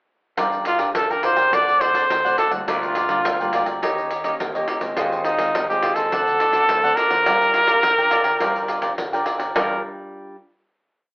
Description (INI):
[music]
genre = samba and choro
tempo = 105 BPM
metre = 4/4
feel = straight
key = G minor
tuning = A4 = 440 Hz
[part]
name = cavaquinho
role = accompaniment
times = 0.4-9.8 s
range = D4 to G5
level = -23 LUFS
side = equal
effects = none
[part]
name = nylon-string guitar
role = accompaniment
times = 0.4-10.4 s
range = A2 to Bb4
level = -32 LUFS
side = equal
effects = none
[part]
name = growling fingered electric bass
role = bass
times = 0.4-9.8 s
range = G1 to Eb3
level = -33 LUFS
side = equal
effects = overdrive
[part]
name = pandeiro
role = percussion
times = 0.4-9.7 s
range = none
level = -26 LUFS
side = equal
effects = none
[part]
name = breathy trumpet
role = melody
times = 0.7-9.8 s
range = Eb4 to D5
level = -18 LUFS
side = equal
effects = none
[sound]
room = wet studio reverb, RT60 0.6 s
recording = band playing live in one room, telephone sound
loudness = -17 LUFS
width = side -35 dB against mid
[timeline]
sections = 0.4-9.6 A section; 9.6-11.1 final chord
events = none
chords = 0.4 Gm7; 1.5 D7; 2.7 Gm7/D; 3.8 Eb7; 5.0 Ab6/Eb; 6.1 D7; 7.3 Gm7